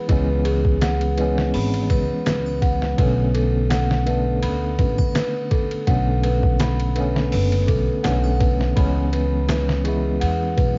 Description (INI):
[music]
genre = trip hop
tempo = 83 BPM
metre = 4/4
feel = swing 54% on 16ths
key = B dorian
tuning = A4 = 439 Hz
[part]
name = tine electric piano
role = accompaniment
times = 0.0-10.8 s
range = D3 to E4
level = -27 LUFS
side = equal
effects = tremolo, cassette tape
[part]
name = large celesta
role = arpeggios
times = 0.0-10.8 s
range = G#4 to B5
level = -28 LUFS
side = equal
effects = cassette tape, tape echo
[part]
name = upright bass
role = bass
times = 0.1-10.8 s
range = F#1 to E2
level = -24 LUFS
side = equal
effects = none
[part]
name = trip hop sampler-style drum kit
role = drums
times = 0.1-10.8 s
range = hi-hat, kick drum, ride cymbal, snare drum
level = -26 LUFS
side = equal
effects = small room ambience, cassette tape
[part]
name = tube shaker and triangle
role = percussion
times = 0.8-9.6 s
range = none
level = -47 LUFS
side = equal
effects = none
[sound]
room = light reverb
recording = home recording on cassette, vinyl crackle, nothing above 7.6 kHz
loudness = -20 LUFS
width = mono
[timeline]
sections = 0.0-10.8 A section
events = none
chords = 0.0 C#m7; 3.0 Bm9; 8.8 C#m7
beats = | 0.10 0.82 1.54 2.27 | 2.99 3.71 4.43 5.16 | 5.88 6.60 7.33 8.05 | 8.77 9.49 10.22